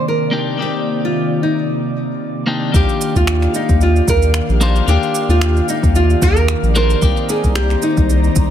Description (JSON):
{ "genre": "sunset chillout", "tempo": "112 BPM", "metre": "4/4", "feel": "swing 55% on 16ths", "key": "Eb major", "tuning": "A4 = 442 Hz", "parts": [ { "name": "nylon-string guitar", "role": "melody", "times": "0.0-8.5 s", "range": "Eb4 to Bb4", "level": "-19 LUFS", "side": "right 2 dB", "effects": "digital delay" }, { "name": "clean electric guitar", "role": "accompaniment", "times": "0.0-8.5 s", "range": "Bb3 to D5", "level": "-22 LUFS", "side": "moving between left 6 dB and right 3 dB", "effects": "auto-pan, ping-pong delay" }, { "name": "airy breathy pad", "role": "sustained chords", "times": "0.0-8.5 s", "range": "C3 to Bb5", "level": "-22 LUFS", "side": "left 4 dB", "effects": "chorus, phaser" }, { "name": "round analog bass", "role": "bass", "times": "2.7-8.5 s", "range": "Bb1 to Eb2", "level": "-14 LUFS", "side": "equal", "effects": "none" }, { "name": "electronic kick drum", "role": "drums", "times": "2.7-8.5 s", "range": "none", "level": "-17 LUFS", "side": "equal", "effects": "overdrive" }, { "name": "electronic shaker and finger snaps", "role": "drums", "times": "2.7-8.5 s", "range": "none", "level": "-25 LUFS", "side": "right 3 dB", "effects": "overdrive" } ], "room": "light reverb", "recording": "none", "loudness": "-13 LUFS", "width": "side -10 dB against mid", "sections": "0.0-2.7 A section; 2.7-8.5 B section", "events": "none", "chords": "0.0 Cm9; 2.7 Ebmaj9; 7.0 Cm9", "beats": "0.06 | 0.60 1.13 1.67 2.20 | 2.74 3.27 3.81 4.35 | 4.88 5.42 5.95 6.49 | 7.02 7.56 8.10" }